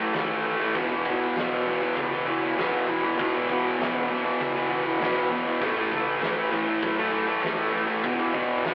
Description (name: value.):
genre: garage rock duo or trio.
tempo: 99 BPM.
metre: 4/4.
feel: straight.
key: E major.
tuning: A4 = 439 Hz.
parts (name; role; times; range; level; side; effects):
thick fuzz guitar; riff; 0.0-8.7 s; E2 to A3; -23 LUFS; equal; distortion.
hollow-body short-scale picked electric bass; bass; 0.0-8.7 s; E1 to F#2; -45 LUFS; equal; none.
oversized low-tuned drum kit; drums; 0.1-8.7 s; crash cymbal, kick drum, snare drum; -31 LUFS; equal; none.
room: wet stone room reverb, RT60 1.1 s.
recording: rough rehearsal-room recording, tube saturation, cassette tape, telephone sound.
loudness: -23 LUFS.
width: side -23 dB against mid.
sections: 0.0-8.7 A section.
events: none.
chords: 0.0 A5; 0.8 E5; 5.6 A5; 8.1 E.